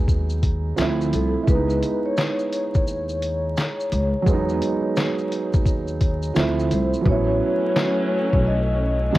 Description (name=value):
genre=lo-fi hip hop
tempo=86 BPM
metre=4/4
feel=swing 63% on 16ths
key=unclear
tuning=A4 = 440 Hz
part: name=felt-muted upright piano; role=accompaniment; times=0.0-9.2 s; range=F3 to E4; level=-24 LUFS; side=right 4 dB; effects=cassette tape, low-pass filter
part: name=upright bass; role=bass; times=0.0-9.2 s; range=A1 to E2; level=-24 LUFS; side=equal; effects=none
part: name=lo-fi sampler-style drum kit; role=drums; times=0.1-9.2 s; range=handclaps, hi-hat, kick drum, shaker, snare drum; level=-22 LUFS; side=equal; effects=none
part: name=vibraphone with soft mallets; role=melody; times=1.1-9.2 s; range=A4 to D#5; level=-26 LUFS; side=left 2 dB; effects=low-pass filter, cassette tape, analog delay
part: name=warm studio string section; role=sustained chords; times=7.1-9.2 s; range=F#3 to D4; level=-26 LUFS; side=equal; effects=low-pass filter, cassette tape
room=light reverb, studio reverb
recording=home recording on cassette, vinyl crackle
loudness=-19 LUFS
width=side -16 dB against mid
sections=0.0-7.1 A section; 7.1-9.2 B section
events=hi-hats muted 7.1-9.2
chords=0.0 Emaj7 (rootless); 0.8 Dm7; 1.5 C#m7; 4.3 Emaj7; 6.4 Dm7; 7.1 A69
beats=0.08 0.78 | 1.47 2.17 2.87 3.57 | 4.26 4.96 5.66 6.36 | 7.05 7.75 8.45 9.15